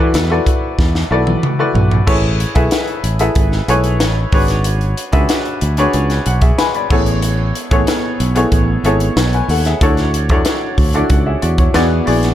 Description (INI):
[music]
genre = polished 1980s jazz-funk pop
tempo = 93 BPM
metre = 4/4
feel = straight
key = A major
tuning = A4 = 439 Hz
[part]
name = clear baby grand piano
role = accompaniment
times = 0.0-12.3 s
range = B3 to B5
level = -17 LUFS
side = left 1 dB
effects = wide subtle chorus
[part]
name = sustaining fretless electric bass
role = bass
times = 0.0-12.3 s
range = G#1 to E3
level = -16 LUFS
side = equal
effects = none
[part]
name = crisp fusion drum kit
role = drums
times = 0.1-12.3 s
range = crash cymbal, hi-hat, kick drum, snare drum, toms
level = -16 LUFS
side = equal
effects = none
[sound]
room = small room ambience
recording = dark, warm production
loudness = -12 LUFS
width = side -12 dB against mid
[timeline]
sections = 0.0-2.1 A section; 2.1-12.3 B section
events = drum fill 0.8-2.1; grand piano fill 5.9-7.2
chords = 0.0 E9sus4; 2.1 Amaj9; 4.3 E13/G#; 6.9 Amaj9; 9.8 Dmaj9; 11.7 E9